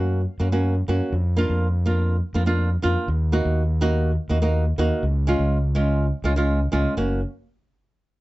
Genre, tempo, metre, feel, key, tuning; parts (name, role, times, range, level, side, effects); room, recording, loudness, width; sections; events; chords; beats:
calypso; 123 BPM; 4/4; straight; F# major; A4 = 443 Hz
flamenco guitar; accompaniment; 0.0-7.2 s; G#3 to F#4; -24 LUFS; right 1 dB
overdriven fingered electric bass; bass; 0.0-7.2 s; F#1 to F#2; -21 LUFS; equal
light reverb; nothing above 7.9 kHz; -20 LUFS; side -18 dB against mid
0.0-7.0 A section; 7.0-8.2 B section
0.0 F#; 1.1 A#/E#; 3.1 D#m; 5.0 C#; 7.0 F#
0.15 0.64 | 1.13 1.61 2.10 2.59 | 3.08 3.56 4.05 4.54 | 5.03 5.51 6.00 6.49 | 6.97